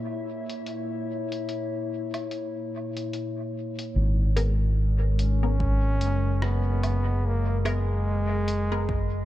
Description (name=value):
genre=ambient dub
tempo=73 BPM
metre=4/4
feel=swing 59% on 16ths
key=G# minor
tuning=A4 = 440 Hz
part: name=warbly tape-like pad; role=sustained chords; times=0.0-9.2 s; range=A#2 to E5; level=-32 LUFS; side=left 2 dB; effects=chorus, built-in reverb
part: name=lo-fi sampler-style drum kit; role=drums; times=0.5-8.7 s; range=hi-hat, rim click, woodblock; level=-40 LUFS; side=right 1 dB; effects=low-pass filter on hats, studio reverb, low-pass filter on perc, low-pass filter on snare, dub echo
part: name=fingered electric bass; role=bass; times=4.0-9.2 s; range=F#1 to G#1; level=-24 LUFS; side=equal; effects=none
part: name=filtered dub chord stab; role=stabs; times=4.4-8.9 s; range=B3 to A#4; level=-36 LUFS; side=left 2 dB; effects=phaser, dub echo
part: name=clear trombone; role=melody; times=5.2-9.2 s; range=G#3 to C#4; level=-31 LUFS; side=equal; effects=dub echo
part: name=electronic kick drum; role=drums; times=5.6-9.1 s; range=none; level=-30 LUFS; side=equal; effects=overdrive, studio reverb
room=little or no reverb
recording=dark, warm production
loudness=-24 LUFS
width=side -14 dB against mid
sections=0.0-4.0 A section; 4.0-9.2 B section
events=none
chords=0.0 A#dim; 4.0 G#madd9